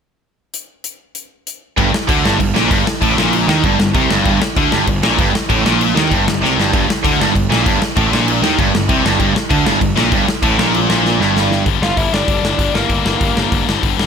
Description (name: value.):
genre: punk rock.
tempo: 194 BPM.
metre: 4/4.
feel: straight.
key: G minor.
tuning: A4 = 439 Hz.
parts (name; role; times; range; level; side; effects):
big rock drum kit; drums; 0.5-14.1 s; crash cymbal, hi-hat, kick drum, snare drum; -18 LUFS; equal; none.
overdriven electric guitar; riff; 1.8-11.7 s; G2 to Eb3; -19 LUFS; right 11 dB; none.
tight distorted guitar; riff; 1.8-14.1 s; G2 to G3; -19 LUFS; left 15 dB; distortion.
tight distorted guitar; riff; 1.8-11.7 s; G2 to Eb3; -20 LUFS; left 2 dB; distortion.
fuzz picked electric bass; bass; 1.8-14.1 s; G1 to Eb2; -20 LUFS; equal; overdrive.
bluesy overdriven lead guitar; melody; 11.8-13.6 s; Bb3 to F5; -20 LUFS; equal; distortion.
room: light reverb.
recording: none.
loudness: -12 LUFS.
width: side -7 dB against mid.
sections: 0.5-1.8 A section; 1.8-11.7 B section; 11.7-14.1 C section.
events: drum fill 6.4-6.7, 11.0-11.7.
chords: 0.5 N.C.; 1.8 Gm.